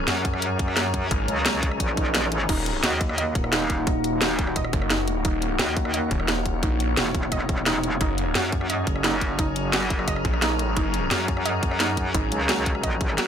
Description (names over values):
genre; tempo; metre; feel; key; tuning
dark technical drum and bass; 174 BPM; 4/4; straight; unclear; A4 = 442 Hz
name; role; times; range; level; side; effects
metallic inharmonic drone; sustained chords; 0.0-13.3 s; Eb3 to Bb4; -28 LUFS; left 1 dB; chorus, built-in reverb, sidechain pumping
snarling distorted saw bass; bass; 0.0-12.3 s; Eb1 to Bb1; -26 LUFS; equal; distortion
metallic wobble bass; bass; 0.1-13.2 s; Eb1 to Gb2; -26 LUFS; equal; chorus, tube saturation
drum and bass drum kit; drums; 0.1-13.2 s; crash cymbal, hi-hat, rim click, snare drum; -26 LUFS; equal; overdrive, studio reverb
electronic kick drum; drums; 0.2-13.1 s; none; -26 LUFS; equal; overdrive, studio reverb
swell; sound effects; 1.9-2.5 s; none; -33 LUFS; right 5 dB; none
warbly dusty pluck; arpeggios; 2.5-13.3 s; Eb4 to Eb5; -30 LUFS; right 3 dB; chorus, sidechain pumping, ping-pong delay
room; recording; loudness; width
little or no reverb; none; -21 LUFS; side -8 dB against mid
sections
0.0-13.3 A section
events
swell 1.9-2.5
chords
0.0 Gb; 2.5 Ebm7; 8.0 Gb